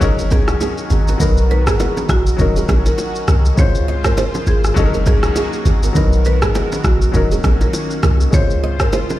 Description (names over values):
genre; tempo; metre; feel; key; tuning
afrobeats; 101 BPM; 4/4; swing 58% on 16ths; Db major; A4 = 438 Hz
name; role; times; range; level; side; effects
clear concert grand piano; accompaniment; 0.0-9.2 s; Gb3 to C5; -23 LUFS; left 4 dB; none
lush unison pad; sustained chords; 0.0-9.2 s; Db3 to C5; -26 LUFS; right 1 dB; chorus, phaser
clean 808-style bass; bass; 0.0-8.8 s; Eb1 to Db2; -16 LUFS; equal; none
afro-pop drum kit; drums; 0.0-9.2 s; kick drum, rim click, shaker; -18 LUFS; equal; none
congas and bongos; percussion; 0.0-9.2 s; none; -24 LUFS; right 2 dB; none
nylon-string guitar; riff; 0.2-9.1 s; Eb4 to Eb5; -25 LUFS; right 6 dB; ping-pong delay
marimba with medium mallets; melody; 0.3-8.9 s; Gb4 to Db5; -24 LUFS; equal; ping-pong delay
room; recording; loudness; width
small room ambience; played on a big sound system in a bare room, stone room reverb; -13 LUFS; side -15 dB against mid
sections
0.0-9.2 A section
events
none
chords
0.0 Gb6; 1.2 Cbmaj7; 2.4 Ebm7; 3.6 Dbmaj7; 4.8 Gb6; 6.0 Cbmaj7; 7.1 Ebm7; 8.3 Dbmaj7